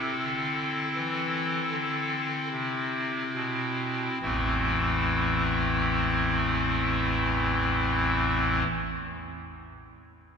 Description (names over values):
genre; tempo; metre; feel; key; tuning
classical, chorale-style piece for pipe organ; 34-42 BPM; 4/4; rubato; A minor; A4 = 441 Hz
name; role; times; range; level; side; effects
pipe organ, clarinet reed; solo; 0.0-8.6 s; A1 to A4; -25 LUFS; equal; none
room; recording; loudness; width
wet church reverb, RT60 3.7 s; minimal, uncompressed stereo recording; -25 LUFS; side -6 dB against mid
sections
0.0-4.2 A section; 4.2-10.4 B section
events
slowing down 0.0-4.2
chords
0.0 Am